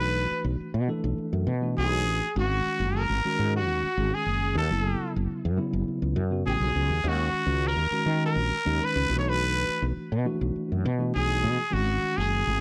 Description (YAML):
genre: jazz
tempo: 103 BPM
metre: 4/4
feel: straight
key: unclear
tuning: A4 = 441 Hz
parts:
  - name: trumpet with straight mute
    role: melody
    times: 0.0-12.6 s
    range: Gb4 to Db5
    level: -30 LUFS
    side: equal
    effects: none
  - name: overdriven semi-hollow guitar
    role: second line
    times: 0.0-12.6 s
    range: Gb4 to Db5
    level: -38 LUFS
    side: equal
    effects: none
  - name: tine electric piano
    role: accompaniment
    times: 0.0-12.6 s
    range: Db3 to A4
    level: -34 LUFS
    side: equal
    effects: none
  - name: woody fretless electric bass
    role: bass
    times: 0.0-12.6 s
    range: Gb1 to Eb3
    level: -29 LUFS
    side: equal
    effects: none
room: little or no reverb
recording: dry, close 1970s-style studio recording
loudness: -27 LUFS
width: mono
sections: 0.0-12.6 A section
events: none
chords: 0.0 Bm7; 2.4 Absus2; 4.7 Gbm9; 7.0 Ebm7; 9.1 Bm7; 11.7 Ab7(no3)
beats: | 0.02 0.61 1.20 1.78 | 2.37 2.95 3.54 4.12 | 4.71 5.29 5.88 6.46 | 7.05 7.63 8.22 8.80 | 9.38 9.97 10.55 11.14 | 11.72 12.30